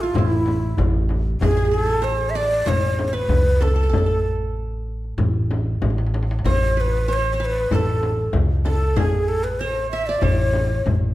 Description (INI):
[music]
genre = Arabic maqam ensemble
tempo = 95 BPM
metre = 4/4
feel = straight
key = A maqam suznak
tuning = A4 = 440 Hz
[part]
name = breathy ney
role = melody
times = 0.0-10.9 s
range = E4 to E5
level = -23 LUFS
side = equal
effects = none
[part]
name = qanun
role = second line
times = 0.0-11.1 s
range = E4 to E5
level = -29 LUFS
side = right 5 dB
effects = none
[part]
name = upright bass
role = bass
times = 0.0-11.1 s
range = A1 to C2+50c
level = -22 LUFS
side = equal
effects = none
[part]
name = darbuka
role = percussion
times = 0.1-11.0 s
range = none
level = -24 LUFS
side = left 1 dB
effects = none
[part]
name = frame drum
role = percussion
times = 0.2-11.0 s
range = none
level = -28 LUFS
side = left 3 dB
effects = none
[sound]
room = moderate recital hall reverb, RT60 1.4 s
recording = dark, warm production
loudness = -18 LUFS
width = side -16 dB against mid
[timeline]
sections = 0.0-11.1 A section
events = drum fill 5.8-6.5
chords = none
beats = 0.15 0.78 | 1.41 2.04 2.67 3.30 | 3.93 4.56 5.19 5.82 | 6.45 7.08 7.71 8.34 | 8.97 9.60 10.23 10.87